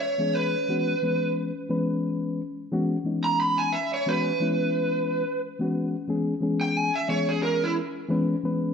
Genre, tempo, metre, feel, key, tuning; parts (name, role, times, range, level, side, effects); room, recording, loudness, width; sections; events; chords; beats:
jazz; 89 BPM; 4/4; swing 53% on 16ths; C# minor; A4 = 445 Hz
lead guitar through a small cranked amp; melody; 0.0-7.7 s; E4 to B5; -26 LUFS; right 2 dB; overdrive, slapback echo
mellow reed electric piano; accompaniment; 0.2-8.7 s; E3 to B4; -26 LUFS; left 2 dB
wet scoring stage reverb, RT60 1.9 s; dark, warm production; -23 LUFS; side -6 dB against mid
0.0-8.7 A section
lead electric guitar solo 0.0-8.7
0.0 C#m7
0.02 | 0.69 1.37 2.04 2.72 | 3.39 4.07 4.74 5.41 | 6.09 6.76 7.44 8.11